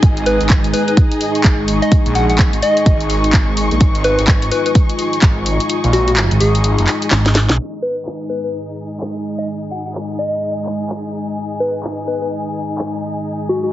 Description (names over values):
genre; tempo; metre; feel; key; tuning
bass house; 127 BPM; 4/4; swing 61% on 16ths; unclear; A4 = 440 Hz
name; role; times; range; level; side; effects
dark analog pad; sustained chords; 0.0-13.7 s; G#3 to G#5; -22 LUFS; right 1 dB; chorus, phaser, sidechain pumping
phased detuned saw bass; bass; 0.0-7.6 s; F#1 to B1; -17 LUFS; equal; phaser, overdrive, sidechain pumping
electronic kick drum; drums; 0.0-5.3 s; none; -12 LUFS; equal; overdrive
house drum kit; drums; 0.0-12.9 s; handclaps, hi-hat, snare drum; -20 LUFS; equal; overdrive, low-pass filter on hats, low-pass filter on snare
dark studio string section; texture; 0.0-13.7 s; D#4 to C#6; -25 LUFS; left 2 dB; sidechain pumping
soft struck synth lead; melody; 0.3-13.7 s; F#4 to F#5; -19 LUFS; left 1 dB; chorus, tape echo
room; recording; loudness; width
light reverb, digital ambience; heavily compressed radio sound, multiband compression, low-pass filter, nothing above 7.8 kHz; -14 LUFS; side -13 dB against mid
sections
0.0-7.6 A section; 7.6-13.7 B section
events
kick drops out 5.7-7.6; drum fill 7.1-7.6; filter sweep on drum 7.6-13.7; filter sweep 7.6-13.7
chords
0.0 G#5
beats
| 0.03 0.50 0.97 1.44 | 1.92 2.39 2.86 3.33 | 3.81 4.28 4.75 5.22 | 5.70 6.17 6.64 7.11 | 7.59 8.06 8.53 9.00 | 9.48 9.95 10.42 10.89 | 11.37 11.84 12.31 12.78 | 13.26